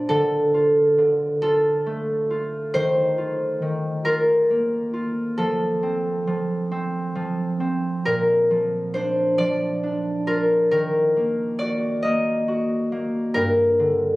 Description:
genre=children's music, lullaby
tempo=45 BPM (dotted quarters)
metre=6/8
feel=straight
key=Bb major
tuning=A4 = 440 Hz
part: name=concert harp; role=melody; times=0.0-14.2 s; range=A4 to Eb5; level=-22 LUFS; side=left 1 dB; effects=none
part: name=concert harp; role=accompaniment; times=0.0-14.2 s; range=G2 to Bb4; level=-23 LUFS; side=right 1 dB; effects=none
room=light reverb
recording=recorded on a phone in the room, club reverb, compression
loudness=-19 LUFS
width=side -19 dB against mid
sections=0.0-8.0 A section; 8.0-14.2 B section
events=none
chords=0.1 Dm; 2.7 Ebsus2; 5.4 F; 8.0 Bb; 10.7 Ebm; 13.4 Gm

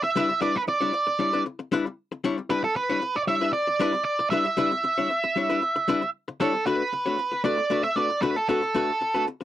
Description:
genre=funk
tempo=115 BPM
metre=4/4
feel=straight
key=E dorian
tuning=A4 = 440 Hz
part: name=octave-fuzz lead guitar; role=melody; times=0.0-9.2 s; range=A4 to E5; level=-24 LUFS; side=right 2 dB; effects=distortion
part: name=archtop guitar, miked and amplified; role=accompaniment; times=0.0-9.4 s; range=G3 to C#5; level=-26 LUFS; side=left 4 dB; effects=none
room=light reverb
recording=dry, close 1970s-style studio recording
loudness=-22 LUFS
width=side -12 dB against mid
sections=0.0-6.7 A section; 6.7-9.4 B section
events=none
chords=0.0 Em7; 6.7 Bm7/A

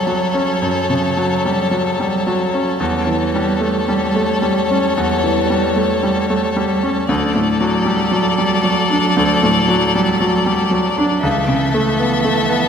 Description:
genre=classical, slow romantic movement for piano quartet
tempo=54-60 BPM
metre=4/4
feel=rubato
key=D major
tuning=A4 = 436 Hz
part: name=clear violin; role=melody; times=0.0-12.7 s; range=C#5 to E5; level=-21 LUFS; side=left 6 dB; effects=none
part: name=clear violin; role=second line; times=0.0-12.7 s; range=A4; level=-23 LUFS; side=left 2 dB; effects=none
part: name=rich cello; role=second line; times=0.0-12.7 s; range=E3 to G3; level=-22 LUFS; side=right 7 dB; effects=none
part: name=bright grand piano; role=accompaniment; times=0.0-12.7 s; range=C#2 to D4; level=-17 LUFS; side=equal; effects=none
room=wet scoring stage reverb, RT60 1.8 s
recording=none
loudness=-14 LUFS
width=side -7 dB against mid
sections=0.0-12.7 A section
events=none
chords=0.0 F#m; 2.8 A7/E; 7.1 D; 11.2 A/C#

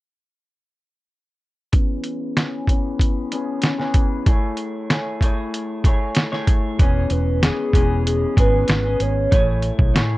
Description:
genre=indie pop, bedroom pop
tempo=95 BPM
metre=4/4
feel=straight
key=E major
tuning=A4 = 440 Hz
part: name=electric guitar through a small old amp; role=accompaniment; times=1.7-10.2 s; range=E3 to C#5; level=-25 LUFS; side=left 2 dB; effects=wide subtle chorus, vibrato effect, low-pass filter
part: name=lo-fi sampler-style drum kit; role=drums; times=1.7-10.1 s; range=hi-hat, kick drum, snare drum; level=-18 LUFS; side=equal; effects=none
part: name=hollow clarinet-like synth lead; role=melody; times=6.8-10.0 s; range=G#4 to C#5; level=-23 LUFS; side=right 1 dB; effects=wide subtle chorus, tape echo
part: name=vintage muted fingered electric bass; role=bass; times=6.8-10.2 s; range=E1 to A2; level=-21 LUFS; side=equal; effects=none
room=little or no reverb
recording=worn, warbling old tape, cassette tape, warbly pitch drift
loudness=-17 LUFS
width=side -18 dB against mid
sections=1.7-6.8 A section; 6.8-10.2 B section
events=filter sweep on clean electric guitar 1.7-6.8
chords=1.7 E6; 4.3 Amaj7; 6.8 E6; 9.3 Amaj7

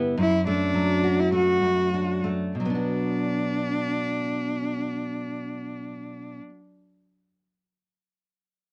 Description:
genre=folk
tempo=92-109 BPM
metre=4/4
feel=straight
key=B minor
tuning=A4 = 436 Hz
part: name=fingerpicked steel-string acoustic guitar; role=accompaniment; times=0.0-6.6 s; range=F#2 to G4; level=-28 LUFS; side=equal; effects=none
part: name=clear cello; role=melody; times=0.2-6.4 s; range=D4 to F#4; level=-30 LUFS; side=equal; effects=none
room=little or no reverb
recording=none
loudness=-25 LUFS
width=mono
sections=0.0-2.6 A section; 2.6-7.8 B section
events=slowing down 0.0-2.6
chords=0.2 D/F#; 2.6 Bm

